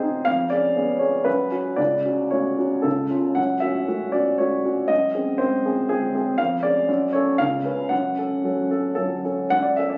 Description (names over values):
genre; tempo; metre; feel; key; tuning
classical, romantic character piece for solo piano; 109-124 BPM; 3/4; rubato; F# minor; A4 = 440 Hz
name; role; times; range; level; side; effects
warm upright piano; solo; 0.0-10.0 s; C#2 to F#5; -22 LUFS; equal; none
room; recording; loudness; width
moderate recital hall reverb, RT60 1.7 s; recorded on a phone in the room, club reverb, compression; -22 LUFS; mono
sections
0.0-9.5 A section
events
none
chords
0.3 C#7/E#; 1.3 F#5; 1.8 F#m/C#; 2.9 C#; 3.4 F#m; 4.9 G#7/F#; 6.4 C#/E#; 6.9 F#m; 7.4 C#7; 7.9 F#m